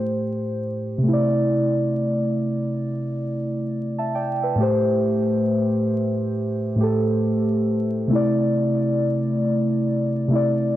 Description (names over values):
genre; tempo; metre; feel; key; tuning
hip hop; 68 BPM; 4/4; swing 64% on 16ths; A minor; A4 = 440 Hz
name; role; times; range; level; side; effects
muted felt-like synth keys; solo; 0.0-10.8 s; A2 to A5; -20 LUFS; equal; chorus, low-pass filter, tape echo
room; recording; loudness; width
moderate spring reverb, RT60 1.9 s; vinyl crackle; -20 LUFS; side -13 dB against mid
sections
0.0-4.6 A section; 4.6-10.8 B section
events
filter sweep on synth keys 0.0-4.6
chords
0.0 Am7; 1.0 C69; 4.6 Am7; 8.1 C69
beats
0.16 | 1.04 1.93 2.81 3.69 | 4.58 5.46 6.34 7.22 | 8.10 8.99 9.87 10.75